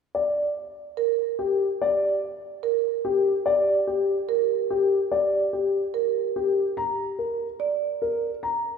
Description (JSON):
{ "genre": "classical, minimalist pattern music", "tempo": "145 BPM", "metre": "4/4", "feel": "straight", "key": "Bb major", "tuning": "A4 = 440 Hz", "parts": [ { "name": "dark grand piano", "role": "melody", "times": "0.1-8.7 s", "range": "G4 to Bb5", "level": "-23 LUFS", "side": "left 2 dB", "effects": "none" }, { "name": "marimba with medium mallets", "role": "arpeggios", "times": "1.0-7.9 s", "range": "Bb4 to D5", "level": "-26 LUFS", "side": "right 10 dB", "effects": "none" } ], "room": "wet scoring stage reverb, RT60 2.0 s", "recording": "heard from further back in the room", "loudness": "-22 LUFS", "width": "side -6 dB against mid", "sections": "0.2-8.8 A section", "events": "none", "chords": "0.2 Bb5; 6.8 Bb" }